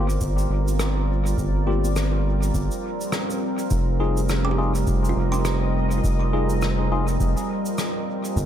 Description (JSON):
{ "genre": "ambient dub", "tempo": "103 BPM", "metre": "4/4", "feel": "swing 58% on 16ths", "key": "unclear", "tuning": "A4 = 440 Hz", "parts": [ { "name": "deep dark ambient pad", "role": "sustained chords", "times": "0.0-8.5 s", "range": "G3 to Eb5", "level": "-26 LUFS", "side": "right 1 dB", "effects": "chorus, built-in reverb" }, { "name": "bright tine electric piano", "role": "stabs", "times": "0.0-7.1 s", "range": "Bb3 to Ab4", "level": "-31 LUFS", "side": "left 5 dB", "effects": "phaser, dub echo" }, { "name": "round analog bass", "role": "bass", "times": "0.0-8.5 s", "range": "F1 to G1", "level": "-22 LUFS", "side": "equal", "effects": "none" }, { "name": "cabasa and rim click", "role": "drums", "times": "0.1-8.5 s", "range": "none", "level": "-32 LUFS", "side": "equal", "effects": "dub echo" }, { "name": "electronic kick drum", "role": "drums", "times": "0.2-8.5 s", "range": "none", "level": "-27 LUFS", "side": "equal", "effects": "none" }, { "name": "kalimba", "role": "arpeggios", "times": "4.4-7.1 s", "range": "F4 to D6", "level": "-34 LUFS", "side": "right 4 dB", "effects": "tape echo" } ], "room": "little or no reverb", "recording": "none", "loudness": "-20 LUFS", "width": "side -10 dB against mid", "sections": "0.0-8.5 A section", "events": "none", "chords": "0.0 Gm7; 3.7 Fm7" }